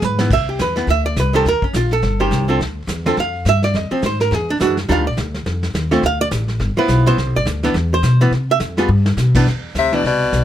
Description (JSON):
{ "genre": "jazz, small-group swing and bop", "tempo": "210 BPM", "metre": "4/4", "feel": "swing 59% on 8ths", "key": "C major", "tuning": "A4 = 444 Hz", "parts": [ { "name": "archtop guitar, miked and amplified", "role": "accompaniment", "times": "0.0-10.0 s", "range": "D3 to F5", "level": "-17 LUFS", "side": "right 2 dB", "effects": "none" }, { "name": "upright bass", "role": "bass", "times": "0.0-10.4 s", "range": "G1 to C3", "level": "-18 LUFS", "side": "left 1 dB", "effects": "none" }, { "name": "vintage brush drum kit", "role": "drums", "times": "0.0-10.4 s", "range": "brushed snare drum, crash cymbal, hi-hat, kick drum, snare drum, toms", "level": "-25 LUFS", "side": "right 1 dB", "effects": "none" }, { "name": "clear soprano saxophone", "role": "melody", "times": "9.8-10.4 s", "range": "D5 to E5", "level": "-18 LUFS", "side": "left 7 dB", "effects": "none" }, { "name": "clear baritone saxophone", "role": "second line", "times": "9.8-10.4 s", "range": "B2 to C3", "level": "-19 LUFS", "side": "left 1 dB", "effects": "none" } ], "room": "little or no reverb", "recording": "close, detailed microphones", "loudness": "-15 LUFS", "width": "side -11 dB against mid", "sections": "0.3-9.5 A section", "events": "drum fill 0.0-0.3, 8.9", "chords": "0.3 Cmaj9; 1.5 Eb13; 2.6 Dm; 3.7 Fm7; 4.3 E9; 4.9 Ebmaj9; 6.0 D5; 6.6 G6; 7.2 Cmaj9; 8.9 G; 9.5 Cmaj9" }